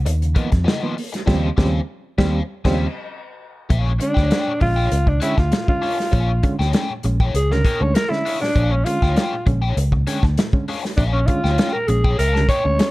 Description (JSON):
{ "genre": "funk", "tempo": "99 BPM", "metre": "4/4", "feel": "straight", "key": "unclear", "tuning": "A4 = 439 Hz", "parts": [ { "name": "fingered electric bass", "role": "bass", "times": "0.0-12.8 s", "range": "Bb1 to F2", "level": "-19 LUFS", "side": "equal", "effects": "none" }, { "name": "crunchy overdriven guitar", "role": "accompaniment", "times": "0.1-12.8 s", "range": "Cb4 to G5", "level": "-29 LUFS", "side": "left 5 dB", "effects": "wah" }, { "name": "bright reed electric piano", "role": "stabs", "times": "0.1-12.9 s", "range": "Bb2 to C#4", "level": "-26 LUFS", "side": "right 2 dB", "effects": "fast tremolo" }, { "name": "warm soul drum kit", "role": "drums", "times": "0.1-12.9 s", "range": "crash cymbal, hi-hat, kick drum, snare drum", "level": "-20 LUFS", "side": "equal", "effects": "none" }, { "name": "growling alto saxophone", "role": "melody", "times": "4.0-12.9 s", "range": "C#4 to C#5", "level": "-21 LUFS", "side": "equal", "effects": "none" } ], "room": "small room ambience", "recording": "dark, warm production", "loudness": "-17 LUFS", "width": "side -19 dB against mid", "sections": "0.0-3.7 A section; 3.7-12.9 B section", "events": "band accent 1.3-3.7; alto saxophone solo 3.7-12.9", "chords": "0.0 Db13; 1.3 Eb13; 3.7 Bb7#9", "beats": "0.06 0.67 | 1.27 1.88 2.49 3.09 | 3.70 4.31 4.92 5.52 | 6.13 6.74 7.34 7.95 | 8.55 9.16 9.77 10.37 | 10.98 11.58 12.19 12.79" }